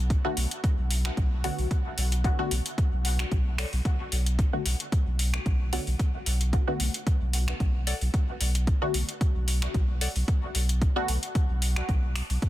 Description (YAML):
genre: dub techno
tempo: 112 BPM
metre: 4/4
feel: swing 54% on 16ths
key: B minor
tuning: A4 = 442 Hz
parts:
  - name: warm sub bass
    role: bass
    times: 0.0-12.4 s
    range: B1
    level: -26 LUFS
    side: equal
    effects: tube saturation, sidechain pumping
  - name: deep house drum kit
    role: drums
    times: 0.1-12.5 s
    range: finger snaps, hi-hat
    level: -33 LUFS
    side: equal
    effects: overdrive, soft clipping on snare
  - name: electronic kick drum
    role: drums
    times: 0.1-12.5 s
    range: none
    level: -25 LUFS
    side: equal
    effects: overdrive
  - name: filtered dub chord stab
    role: stabs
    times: 0.2-11.1 s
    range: D3 to F#4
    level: -34 LUFS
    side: left 1 dB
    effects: chorus, phaser, sidechain pumping, dub echo
  - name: wavetable chord stab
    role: riff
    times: 1.4-10.1 s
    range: A4 to F#5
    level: -42 LUFS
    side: left 3 dB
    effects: sidechain pumping, dub echo
room: digital ambience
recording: dense, heavily limited modern master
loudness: -24 LUFS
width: side -15 dB against mid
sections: 0.0-12.5 A section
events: none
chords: 0.0 Bm7